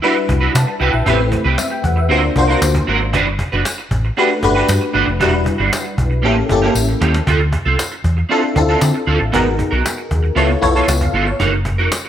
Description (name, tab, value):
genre	polished 1980s jazz-funk pop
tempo	116 BPM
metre	4/4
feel	straight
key	A dorian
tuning	A4 = 440 Hz
part	FM electric piano	accompaniment	0.0-11.5 s	G3 to A5	-18 LUFS	left 2 dB	ensemble chorus
part	electric guitar at the edge of break-up	riff	0.0-12.1 s	G3 to B4	-19 LUFS	right 5 dB	ensemble chorus
part	cajon	drums	0.0-12.1 s	none	-23 LUFS	equal	none
part	hollow-body short-scale fingered electric bass	bass	0.3-11.9 s	E1 to D3	-17 LUFS	equal	none
part	tambourine	percussion	0.6-12.0 s	none	-28 LUFS	left 4 dB	none
room	light reverb, small room ambience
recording	bright 1980s-style digital production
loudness	-13 LUFS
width	side -10 dB against mid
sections	0.0-12.1 A section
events	drum fill 6.7-7.3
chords	0.0 Cmaj9#11; 1.1 Am9; 2.1 D7alt; 3.1 Gmaj7; 5.2 Em9; 6.2 A7b9; 7.3 Dm7; 9.3 G#m9; 10.4 C#7alt; 11.4 F#6